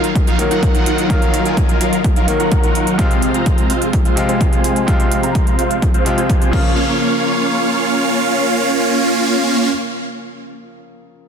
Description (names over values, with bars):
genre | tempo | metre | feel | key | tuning
EDM, festival progressive house | 127 BPM | 4/4 | straight | Bb minor | A4 = 440 Hz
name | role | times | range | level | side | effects
bright baby grand piano | accompaniment | 0.0-11.3 s | C3 to F4 | -21 LUFS | left 2 dB | sidechain pumping, digital delay
supersaw chords | riff | 0.0-9.7 s | Gb3 to Bb5 | -16 LUFS | right 1 dB | phaser, sidechain pumping, low-pass filter, digital delay
big-room dance drum kit | drums | 0.0-6.6 s | crash cymbal, hi-hat | -27 LUFS | right 5 dB | none
electronic kick drum | drums | 0.2-6.6 s | none | -16 LUFS | equal | overdrive
room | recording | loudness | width
light reverb | dense, heavily limited modern master | -13 LUFS | side -7 dB against mid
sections
0.0-6.8 A section; 6.8-10.5 B section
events
filter sweep on supersaw synth 0.0-6.8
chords
0.0 Ebmadd9; 3.0 Fm; 6.5 Bbm